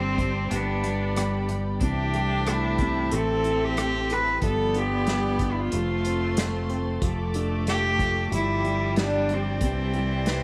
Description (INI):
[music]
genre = acoustic folk-pop ballad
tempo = 92 BPM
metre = 4/4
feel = straight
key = unclear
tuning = A4 = 441 Hz
[part]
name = warm cello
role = melody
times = 0.0-10.4 s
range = B3 to B4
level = -30 LUFS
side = equal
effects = none
[part]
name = rich viola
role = second line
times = 0.0-10.4 s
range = E3 to D4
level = -34 LUFS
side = equal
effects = none
[part]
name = felt-muted upright piano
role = accompaniment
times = 0.0-10.4 s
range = C3 to B4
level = -35 LUFS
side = equal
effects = none
[part]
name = warm studio string section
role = sustained chords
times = 0.0-10.4 s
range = C4 to D6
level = -38 LUFS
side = equal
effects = none
[part]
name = electric guitar through a small old amp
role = arpeggios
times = 0.0-10.4 s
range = E3 to G4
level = -37 LUFS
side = equal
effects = tremolo
[part]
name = fretless electric bass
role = bass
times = 0.0-10.4 s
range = F1 to C2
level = -31 LUFS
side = equal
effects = none
[part]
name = unplugged drum kit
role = drums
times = 0.2-10.4 s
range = hi-hat, kick drum, rim click, snare drum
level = -32 LUFS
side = equal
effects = none
[sound]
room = light reverb, small room reverb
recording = none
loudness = -25 LUFS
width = mono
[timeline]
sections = 0.0-10.4 A section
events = none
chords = 0.0 Gsus4; 0.5 G; 1.8 C6; 3.1 Am7; 4.4 G7; 5.7 F; 7.0 Dmadd9/F; 8.3 G7; 9.6 Cmaj7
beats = 0.50 1.16 | 1.81 2.47 3.12 3.77 | 4.42 5.08 5.73 6.37 | 7.02 7.67 8.32 8.97 | 9.62 10.27